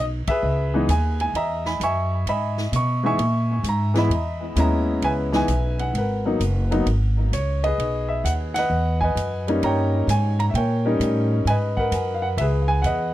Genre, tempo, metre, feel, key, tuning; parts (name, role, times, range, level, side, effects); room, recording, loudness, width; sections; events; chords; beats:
jazz piano trio; 130 BPM; 4/4; swing 67% on 8ths; A4 = 440 Hz
clear concert grand piano; melody; 0.0-13.1 s; E3 to C#6; -22 LUFS; equal; tape echo
upright bass; bass; 0.0-13.1 s; F#1 to B2; -22 LUFS; equal
swinging big-band drum kit; drums; 0.3-13.0 s; hi-hat, kick drum, ride cymbal, snare drum; -35 LUFS; right 1 dB
light reverb; dry, close 1970s-style studio recording; -19 LUFS; side -14 dB against mid
0.0-13.1 A section
band accent 0.2
0.4 C#m9; 5.9 G#m9; 7.8 Emaj7; 9.6 D#7; 11.5 G#m9; 12.4 C#m9
| 0.43 0.89 1.34 1.80 | 2.26 2.72 3.18 3.64 | 4.10 4.56 5.02 5.48 | 5.94 6.40 6.86 7.32 | 7.78 8.24 8.70 9.16 | 9.62 10.08 10.54 11.00 | 11.46 11.92 12.38 12.84